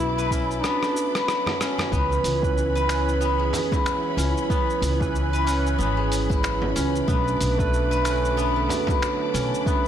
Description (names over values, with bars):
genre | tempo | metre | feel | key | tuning
organic downtempo | 93 BPM | 4/4 | swing 58% on 16ths | B dorian | A4 = 440 Hz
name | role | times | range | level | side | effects
warm duduk | melody | 0.0-1.3 s | D4 to E4 | -29 LUFS | left 1 dB | digital delay
warm symphonic string section | sustained chords | 0.0-9.9 s | E4 to D6 | -34 LUFS | left 1 dB | sidechain pumping
steel-string zither | arpeggios | 0.0-9.9 s | F#3 to B4 | -26 LUFS | left 2 dB | digital delay
upright bass | bass | 0.0-9.5 s | G#1 to C#2 | -26 LUFS | equal | sidechain pumping
dusty soul sampler-style drum kit | drums | 0.0-9.8 s | finger snaps, hi-hat, rim click, shaker | -31 LUFS | equal | soft clipping on snare
electronic kick drum | drums | 0.3-9.8 s | none | -25 LUFS | equal | overdrive
frame drum | percussion | 1.5-9.0 s | none | -34 LUFS | right 3 dB | none
barky tine electric piano | accompaniment | 1.9-9.9 s | D3 to B4 | -27 LUFS | right 5 dB | analog chorus, sidechain pumping, digital delay
room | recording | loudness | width
moderate echo chamber reverb, RT60 2.3 s | blown-out, overdriven recording, overdrive | -20 LUFS | side -10 dB against mid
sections
0.0-9.9 A section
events
drum fill 0.6-1.9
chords
0.0 Bm7; 1.9 C#m7; 7.1 Bm7